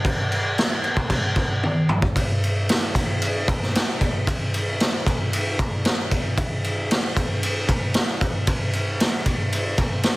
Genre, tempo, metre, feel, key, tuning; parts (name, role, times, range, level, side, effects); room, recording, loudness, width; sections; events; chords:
rock; 114 BPM; 4/4; straight
raw garage drum kit; drums; 0.0-10.2 s; crash cymbal, kick drum, ride cymbal, snare drum, toms; -20 LUFS; equal; soft clipping on kick
little or no reverb; dense, heavily limited modern master; -20 LUFS; side -21 dB against mid
0.0-2.2 A section; 2.2-10.2 B section
drum fill 1.6-2.2